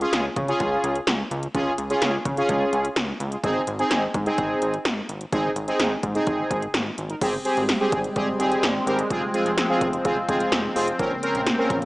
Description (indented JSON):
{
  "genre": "synth-pop",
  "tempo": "127 BPM",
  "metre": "4/4",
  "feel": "straight",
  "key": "unclear",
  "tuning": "A4 = 440 Hz",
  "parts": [
    { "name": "analog synth brass", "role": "accompaniment", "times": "0.0-11.8 s", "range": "C4 to Bb4", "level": "-24 LUFS", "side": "equal", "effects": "chorus" },
    { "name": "chorused synth bass", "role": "bass", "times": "0.0-11.9 s", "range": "F1 to Db3", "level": "-30 LUFS", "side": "equal", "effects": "none" },
    { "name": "80s electronic pad drums", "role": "drums", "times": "0.0-11.9 s", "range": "crash cymbal, hi-hat, kick drum, snare drum", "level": "-26 LUFS", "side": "equal", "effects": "none" },
    { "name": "sweeping resonant pad", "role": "sustained chords", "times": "7.2-11.9 s", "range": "Db3 to C4", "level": "-26 LUFS", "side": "equal", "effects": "chorus" }
  ],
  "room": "moderate scoring stage reverb, RT60 1.4 s, digital ambience",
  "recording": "small speaker sound",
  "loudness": "-21 LUFS",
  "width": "side -20 dB against mid",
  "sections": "0.0-7.2 A section; 7.2-11.9 B section",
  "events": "none",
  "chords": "0.0 Db; 3.4 Ab; 7.2 Abmaj7; 9.1 Fm; 11.0 Bbmadd9",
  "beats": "0.13 0.60 1.07 | 1.54 2.02 2.49 2.96 | 3.44 3.91 4.38 4.85 | 5.33 5.80 6.27 6.74 | 7.21 7.69 8.16 8.63 | 9.11 9.58 10.05 10.52 | 10.99 11.47"
}